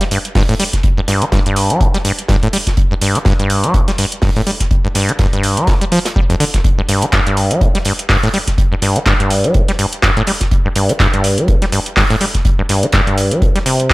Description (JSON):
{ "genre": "acid house", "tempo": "124 BPM", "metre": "4/4", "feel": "swing 57% on 16ths", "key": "unclear", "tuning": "A4 = 440 Hz", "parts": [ { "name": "acid bass, saw", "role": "riff", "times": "0.0-13.9 s", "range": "G1 to G3", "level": "-15 LUFS", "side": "equal", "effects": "tube saturation, vintage 12-bit sampler grit, sidechain pumping, digital delay" }, { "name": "booming analog drum machine", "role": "drums", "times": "0.0-13.9 s", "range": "handclaps, hi-hat", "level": "-18 LUFS", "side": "equal", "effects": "none" }, { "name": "warm soul drum kit", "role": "drums", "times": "0.0-13.9 s", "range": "hi-hat, snare drum", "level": "-25 LUFS", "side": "right 2 dB", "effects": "sidechain pumping on hats, high-pass filter on hats, high-pass filter on snare, high-pass filter on room" }, { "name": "electronic kick drum", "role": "drums", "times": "0.4-13.9 s", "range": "none", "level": "-15 LUFS", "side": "equal", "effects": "none" } ], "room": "light reverb, small room ambience", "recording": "none", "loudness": "-12 LUFS", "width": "side -21 dB against mid", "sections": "0.0-13.9 A section", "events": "none", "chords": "none" }